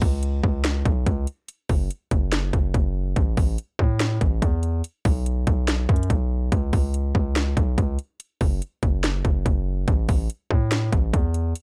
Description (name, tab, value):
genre	hip hop, trap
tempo	143 BPM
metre	4/4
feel	half-time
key	unclear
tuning	A4 = 440 Hz
part	distorted 808-style bass	bass	0.0-11.5 s	F#1 to A2	-26 LUFS	equal	distortion
part	trap drum kit	drums	0.0-11.6 s	hi-hat, kick drum, snare drum	-24 LUFS	equal	none
room	little or no reverb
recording	dark, warm production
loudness	-23 LUFS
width	mono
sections	0.0-11.6 A section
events	none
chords	none